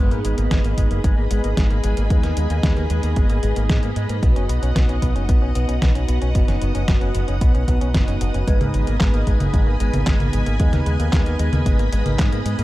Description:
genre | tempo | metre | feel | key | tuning
italo disco | 113 BPM | 4/4 | straight | G# minor | A4 = 438 Hz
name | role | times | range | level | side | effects
string machine, full ensemble | sustained chords | 0.0-12.6 s | G#4 to D#6 | -30 LUFS | left 1 dB | ensemble chorus
electric guitar with an envelope filter | arpeggios | 0.0-12.6 s | G#3 to C#4 | -30 LUFS | left 3 dB | low-pass filter, digital delay
mellow synth brass | stabs | 0.0-12.6 s | B3 to B4 | -28 LUFS | right 2 dB | chorus, digital delay
fingered electric bass with an envelope filter | bass | 0.0-12.6 s | F#1 to G#2 | -21 LUFS | equal | none
detuned 8-bit digital drum machine | drums | 0.1-12.6 s | congas, handclaps, hi-hat, snare drum | -26 LUFS | equal | none
electronic kick drum | drums | 0.5-12.3 s | none | -19 LUFS | equal | none
room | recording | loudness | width
little or no reverb | dark, warm production | -17 LUFS | side -16 dB against mid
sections
0.0-12.6 A section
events
none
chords
0.0 G#m; 4.2 B; 8.5 G#m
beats
0.51 1.04 1.57 | 2.10 2.63 3.17 3.70 | 4.23 4.76 5.29 5.82 | 6.35 6.88 7.41 7.94 | 8.47 9.01 9.54 10.07 | 10.60 11.13 11.66 12.19

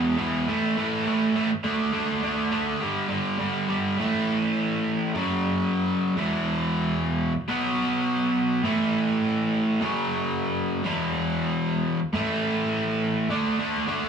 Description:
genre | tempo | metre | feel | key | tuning
punk | 206 BPM | 4/4 | straight | A major | A4 = 440 Hz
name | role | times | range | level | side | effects
cranked stack guitar | solo | 0.0-14.1 s | E2 to D4 | -23 LUFS | right 1 dB | overdrive
room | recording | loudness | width
moderate stone room reverb, RT60 1.0 s | rough rehearsal-room recording, small room ambience | -23 LUFS | side -7 dB against mid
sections
0.0-4.0 A section; 4.0-13.3 B section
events
none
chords
0.5 A5; 1.5 D5; 2.8 G5; 4.0 A5; 5.1 F#5; 6.2 E5; 7.5 B5; 8.6 A5; 9.8 F#5; 10.8 E5; 12.1 A5; 13.3 D5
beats
0.18 | 0.48 0.77 1.06 1.35 | 1.65 1.94 2.23 2.52 | 2.81 3.11 3.40 3.69 | 3.98 4.27 4.56 4.85 | 5.14 5.44 5.73 6.02 | 6.31 6.60 6.89 7.18 | 7.47 7.77 8.06 8.35 | 8.64 8.93 9.22 9.52 | 9.81 10.10 10.39 10.68 | 10.97 11.26 11.55 11.84 | 12.13 12.42 12.71 13.01 | 13.29 13.59 13.88

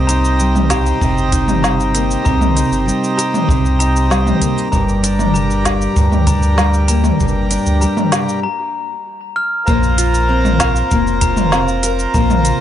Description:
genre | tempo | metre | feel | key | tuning
folktronica | 97 BPM | 4/4 | straight | Bb major | A4 = 440 Hz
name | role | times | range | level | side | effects
hand-pumped harmonium | sustained chords | 0.0-12.6 s | F4 to Bb5 | -22 LUFS | right 4 dB | none
fingerpicked steel-string acoustic guitar | arpeggios | 0.0-12.6 s | G2 to Bb4 | -19 LUFS | left 1 dB | tape echo
warm sub bass | bass | 0.0-12.5 s | F1 to D2 | -17 LUFS | equal | tube saturation
glockenspiel with rubber mallets | second line | 0.1-12.4 s | Bb5 to F6 | -22 LUFS | left 4 dB | tape echo
organic electronic drum kit | drums | 0.1-12.6 s | cabasa, hi-hat, snare drum, toms | -18 LUFS | equal | overdrive
kick drum | drums | 0.7-12.3 s | none | -20 LUFS | equal | none
room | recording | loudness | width
small room ambience | nothing above 10.5 kHz | -12 LUFS | side -11 dB against mid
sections
0.0-9.7 A section; 9.7-12.6 B section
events
break 8.4-9.7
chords
0.0 Cm7; 4.7 Gm; 9.7 Bbsus2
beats
0.40 1.01 1.63 | 2.25 2.87 3.49 4.11 | 4.73 5.34 5.96 6.58 | 7.20 7.82 8.44 9.06 | 9.68 10.29 10.91 11.53 | 12.15

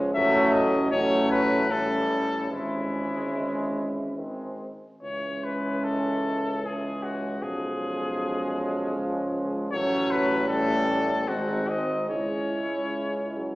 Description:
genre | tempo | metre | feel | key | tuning
classical, hymn-like piece for brass band | 70-80 BPM | 3/4 | rubato | C# minor | A4 = 444 Hz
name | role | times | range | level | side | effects
warm French horn section | second line | 0.0-13.6 s | B#3 to E4 | -30 LUFS | right 1 dB | none
bright trombone section | accompaniment | 0.0-13.6 s | G3 to C#4 | -33 LUFS | equal | none
clear euphonium | accompaniment | 0.0-13.6 s | D#3 to G#3 | -32 LUFS | right 1 dB | none
warm tuba | bass | 0.0-13.6 s | G#1 to C#2 | -32 LUFS | equal | none
mellow cornet | melody | 0.1-13.6 s | E4 to E5 | -28 LUFS | left 2 dB | none
room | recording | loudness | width
wet recital hall reverb, RT60 1.6 s | recorded in a church or concert hall, small speaker sound | -24 LUFS | side -19 dB against mid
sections
0.0-13.6 A section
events
none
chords
0.2 F#m/A; 1.7 A7; 2.5 C#m/G#; 4.2 G#; 5.0 C#m; 7.4 C#7/B; 9.7 F#m/A; 10.5 A7; 11.3 G#7; 12.1 C#m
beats
| 0.15 0.92 1.71 | 2.52 3.35 4.19 | 5.03 5.85 6.64 | 7.43 8.20 8.97 | 9.73 10.49 11.28 | 12.10 12.95

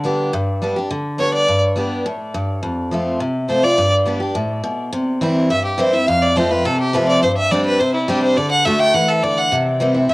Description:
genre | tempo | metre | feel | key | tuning
bluegrass | 209 BPM | 4/4 | straight | G mixolydian | A4 = 436 Hz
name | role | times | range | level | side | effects
picked steel-string acoustic guitar | accompaniment | 0.0-10.1 s | F2 to G4 | -17 LUFS | equal | none
clear fiddle | melody | 1.2-10.1 s | E4 to G5 | -18 LUFS | equal | cassette tape, analog delay
room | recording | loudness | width
moderate small room reverb, RT60 0.6 s | home recording on cassette | -15 LUFS | side -21 dB against mid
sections
0.0-4.9 A section; 4.9-10.1 B section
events
none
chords
0.0 G; 2.6 F; 3.8 G; 4.9 C; 6.1 F; 7.2 Gsus4; 8.4 D; 9.5 C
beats
0.04 | 0.33 0.62 0.91 1.19 | 1.48 1.77 2.06 2.34 | 2.63 2.92 3.21 3.49 | 3.78 4.07 4.36 4.64 | 4.93 5.22 5.50 5.79 | 6.08 6.37 6.65 6.94 | 7.23 7.51 7.80 8.09 | 8.38 8.66 8.95 9.23 | 9.52 9.81 10.10

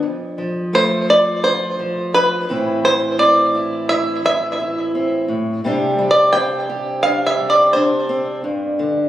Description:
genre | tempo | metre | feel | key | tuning
indie folk with a building arrangement | 86 BPM | 4/4 | straight | unclear | A4 = 444 Hz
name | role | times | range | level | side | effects
fingerpicked acoustic archtop guitar | accompaniment | 0.0-9.1 s | F2 to G4 | -20 LUFS | equal | none
bluegrass banjo | melody | 0.7-8.2 s | B4 to G5 | -15 LUFS | right 1 dB | digital delay
room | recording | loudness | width
moderate scoring stage reverb, RT60 2.1 s | recorded on a phone in the room, club reverb | -15 LUFS | side -13 dB against mid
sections
0.0-9.1 A section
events
none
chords
0.0 F; 2.5 Am; 5.6 Csus2; 8.4 G5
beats
| 0.03 0.73 1.43 2.13 | 2.83 3.53 4.23 4.93 | 5.63 6.33 7.04 7.74 | 8.44

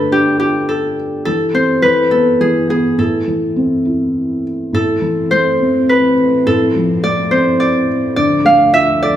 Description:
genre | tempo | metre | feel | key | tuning
children's music, lullaby | 105 BPM | 3/4 | straight | A minor | A4 = 440 Hz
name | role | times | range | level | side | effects
concert harp | melody | 0.0-9.2 s | G4 to F5 | -14 LUFS | equal | none
felt-muted upright piano | accompaniment | 0.0-9.2 s | A2 to A4 | -16 LUFS | equal | none
warm chamber string section | sustained chords | 4.7-9.2 s | D2 to C4 | -20 LUFS | right 1 dB | none
room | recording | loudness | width
wet recital hall reverb, RT60 1.3 s | recorded in a church or concert hall | -12 LUFS | side -11 dB against mid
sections
0.0-4.7 A section; 4.7-9.2 A section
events
none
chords
0.0 Dm; 1.3 Am/E; 1.8 E5; 3.0 Am; 6.5 F/A; 8.2 Dm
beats
0.12 0.69 | 1.26 1.83 2.40 | 2.98 3.56 4.15 | 4.73 5.32 5.89 | 6.47 7.04 7.60 | 8.17 8.74

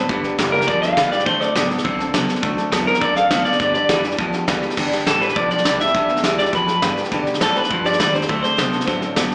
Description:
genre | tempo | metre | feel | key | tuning
rockabilly | 205 BPM | 4/4 | straight | G major | A4 = 441 Hz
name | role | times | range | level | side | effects
electric guitar through a small old amp | melody | 0.0-8.8 s | A4 to F5 | -18 LUFS | equal | slapback echo, tape echo
picked steel-string acoustic guitar | accompaniment | 0.0-9.3 s | G2 to A4 | -24 LUFS | equal | slapback echo
electric guitar at the edge of break-up | riff | 0.0-9.3 s | G2 to C4 | -23 LUFS | equal | slapback echo
upright bass | bass | 0.0-9.3 s | F#1 to B2 | -30 LUFS | equal | none
soft brush drum kit | drums | 0.1-9.3 s | crash cymbal, hi-hat, kick drum, snare drum | -22 LUFS | equal | none
room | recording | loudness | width
light reverb, studio reverb | live gig heard through the venue's PA, club reverb, small speaker sound | -15 LUFS | side -30 dB against mid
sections
0.0-4.8 A section; 4.8-9.3 B section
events
clean electric guitar solo 0.0-4.8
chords
0.1 G; 1.3 D7; 3.6 G; 8.3 D7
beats
| 0.09 0.38 0.68 0.97 | 1.26 1.56 1.85 2.14 | 2.44 2.73 3.02 3.31 | 3.61 3.90 4.19 4.48 | 4.78 5.07 5.36 5.66 | 5.95 6.24 6.53 6.83 | 7.12 7.41 7.70 8.00 | 8.29 8.58 8.87 9.17

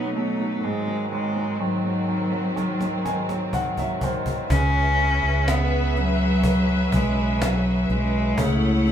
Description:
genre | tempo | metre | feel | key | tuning
pop ballad | 62 BPM | 4/4 | straight | C# minor | A4 = 440 Hz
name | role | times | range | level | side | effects
rich cello | melody | 0.0-8.9 s | F#3 to C#4 | -24 LUFS | left 1 dB | none
bright grand piano | accompaniment | 0.0-8.9 s | G#2 to G#5 | -30 LUFS | right 3 dB | none
rich studio string section | sustained chords | 0.0-8.9 s | G#2 to F#5 | -28 LUFS | left 1 dB | none
cajon | drums | 2.6-8.9 s | none | -28 LUFS | equal | none
mellow fretless electric bass | bass | 4.5-8.9 s | B1 to C#2 | -23 LUFS | equal | none
room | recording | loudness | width
wet small room reverb, RT60 0.5 s | band playing live in one room | -20 LUFS | side -9 dB against mid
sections
0.0-4.5 A section; 4.5-8.9 B section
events
grand piano fill 2.6-4.5; drum fill 2.6-4.5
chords
0.0 B7; 0.6 G#7; 4.5 C#m7; 8.4 F#m7/C#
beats
| 0.64 1.60 2.57 3.54 | 4.51 5.47 6.44 7.41 | 8.38

